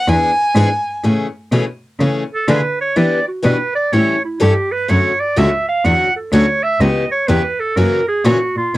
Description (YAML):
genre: acoustic string swing (jazz manouche)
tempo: 125 BPM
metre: 4/4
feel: swing 65% on 8ths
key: A major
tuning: A4 = 439 Hz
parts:
  - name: rich violin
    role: melody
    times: 0.0-1.0 s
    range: F#5 to G#5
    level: -16 LUFS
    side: equal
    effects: cassette tape
  - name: picked steel-string acoustic guitar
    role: accompaniment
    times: 0.1-8.8 s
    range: B2 to A4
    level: -18 LUFS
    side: left 3 dB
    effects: cassette tape
  - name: warm cello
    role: bass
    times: 0.1-8.8 s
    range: C#2 to E3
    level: -16 LUFS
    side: equal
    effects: none
  - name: bright clarinet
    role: second line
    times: 2.3-8.8 s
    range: E4 to F#5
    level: -17 LUFS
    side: right 2 dB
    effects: cassette tape
room: light reverb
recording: home recording on cassette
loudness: -13 LUFS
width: side -17 dB against mid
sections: 0.0-1.0 A section; 1.0-8.8 A section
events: violin solo 0.0-1.0; clarinet solo 1.0-8.8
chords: 0.1 E7; 1.0 Amaj7; 3.0 Em7; 3.9 A7; 4.9 Dmaj7; 6.8 C#m7b5; 7.8 F#7